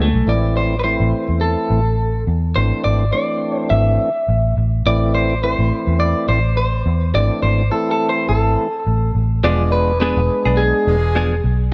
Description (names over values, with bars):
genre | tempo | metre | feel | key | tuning
blues | 105 BPM | 4/4 | swing 56% on 16ths | A harmonic minor | A4 = 442 Hz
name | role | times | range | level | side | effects
electric guitar through a small old amp | melody | 0.0-11.4 s | A3 to E5 | -22 LUFS | equal | spring reverb
tonewheel organ | accompaniment | 0.0-11.0 s | E3 to G#4 | -25 LUFS | equal | overdrive, chorus vibrato, slow rotary speaker
vintage muted fingered electric bass | bass | 0.0-11.7 s | E1 to E2 | -19 LUFS | equal | none
bright horn section | sustained chords | 9.4-11.7 s | G#3 to G#4 | -36 LUFS | equal | none
direct-recorded clean electric guitar | stabs | 9.4-11.3 s | F3 to G#4 | -26 LUFS | equal | harmonic tremolo
room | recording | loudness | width
light reverb | none | -17 LUFS | mono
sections
0.3-11.7 A section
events
none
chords
0.3 Am; 9.4 E7b9